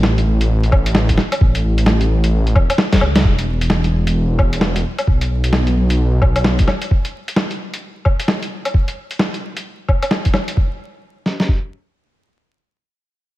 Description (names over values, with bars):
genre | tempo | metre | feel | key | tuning
future garage | 131 BPM | 4/4 | swing 62% on 16ths | unclear | A4 = 439 Hz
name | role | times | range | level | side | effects
swelling detuned saw bass | bass | 0.0-6.7 s | E1 to C#2 | -16 LUFS | equal | sidechain pumping
lo-fi sampler-style drum kit | drums | 0.0-10.6 s | hi-hat, snare drum, woodblock | -19 LUFS | equal | none
lo-fi sampler-style drum kit | drums | 0.7-11.6 s | kick drum, snare drum | -15 LUFS | equal | none
room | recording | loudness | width
light reverb | vinyl crackle | -14 LUFS | side -16 dB against mid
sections
0.0-3.2 A section; 3.2-10.6 B section; 10.6-13.4 C section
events
drum fill 2.9-3.2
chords
none